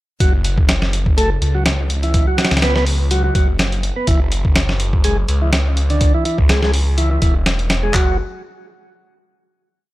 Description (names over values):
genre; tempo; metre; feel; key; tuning
breakbeat, breaks; 124 BPM; 4/4; swing 54% on 16ths; unclear; A4 = 441 Hz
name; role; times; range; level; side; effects
tonewheel organ; riff; 0.2-8.2 s; D3 to B3; -22 LUFS; equal; slow rotary speaker, vintage 12-bit sampler grit, tape echo
phased detuned saw bass; bass; 0.2-8.2 s; E1 to C#2; -18 LUFS; equal; phaser
dusty soul sampler-style drum kit; drums; 0.2-8.1 s; handclaps, hi-hat, kick drum, snare drum; -16 LUFS; equal; none
room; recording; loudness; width
little or no reverb; dry, gritty hardware recording; -14 LUFS; side -17 dB against mid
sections
0.2-7.9 drop; 7.9-9.9 final chord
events
drop 0.2-7.9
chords
0.2 F#5; 4.1 Eadd9/F#; 7.9 N.C.